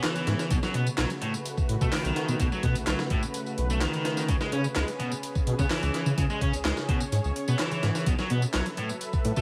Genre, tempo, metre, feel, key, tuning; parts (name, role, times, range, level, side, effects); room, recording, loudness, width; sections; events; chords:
breakbeat, breaks; 127 BPM; 4/4; straight; A4 = 441 Hz
lush unison pad; sustained chords; 0.0-9.4 s; C#3 to E5; -37 LUFS; equal; chorus, sidechain pumping
biting overdriven guitar; riff; 0.0-9.4 s; A2 to C#4; -34 LUFS; equal; digital delay
breakbeat sampler-style drum kit; drums; 0.0-9.4 s; hi-hat, kick drum, snare drum; -32 LUFS; equal; studio reverb
electronic handclaps and tambourine; drums; 0.0-9.4 s; -41 LUFS; equal; studio reverb
dark detuned saw bass; bass; 0.3-9.4 s; B1 to C#3; -30 LUFS; equal
light reverb; vinyl crackle; -27 LUFS; mono
0.0-9.4 A section
0.0 C#m7; 0.5 B5; 4.3 C#m7; 8.1 B7sus4